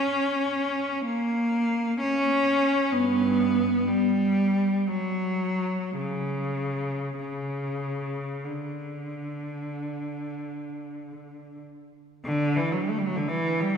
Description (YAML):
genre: classical, free, expressive piece for unaccompanied cello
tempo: 39-65 BPM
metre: 4/4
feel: rubato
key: unclear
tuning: A4 = 440 Hz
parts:
  - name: rich cello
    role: solo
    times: 0.0-13.8 s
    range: G2 to C#4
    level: -24 LUFS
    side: equal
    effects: none
room: wet church reverb, RT60 2.6 s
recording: recorded in a church or concert hall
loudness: -24 LUFS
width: side -6 dB against mid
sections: 0.0-12.2 A section; 12.2-13.8 B section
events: none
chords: none